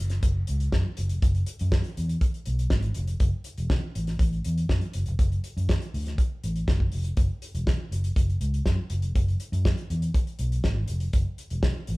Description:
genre	disco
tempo	121 BPM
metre	4/4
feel	straight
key	unclear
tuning	A4 = 440 Hz
part	fingered electric bass	bass	0.0-12.0 s	E1 to F#2	-26 LUFS	equal	none
part	damped 70s drum kit	drums	0.1-12.0 s	hi-hat, kick drum, snare drum	-26 LUFS	equal	none
room	light reverb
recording	band playing live in one room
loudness	-24 LUFS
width	side -22 dB against mid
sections	0.0-12.0 A section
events	none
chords	none

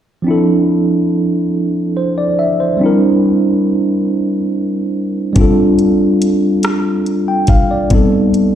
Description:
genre	slow six-eight R&B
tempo	47 BPM (dotted quarters)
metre	6/8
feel	straight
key	D minor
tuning	A4 = 439 Hz
part	tine electric piano	accompaniment	0.2-8.6 s	F3 to G5	-12 LUFS	equal	medium stereo tremolo, plate reverb, slapback echo
part	smooth R&B drum kit	drums	5.4-8.5 s	hi-hat, kick drum, rim click	-13 LUFS	equal	none
room	moderate club reverb, RT60 0.8 s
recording	live gig heard through the venue's PA, recital hall reverb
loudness	-11 LUFS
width	side -10 dB against mid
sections	0.3-8.6 A section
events	none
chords	0.3 Dm9; 2.8 C7; 5.4 F69; 7.9 Am7b5

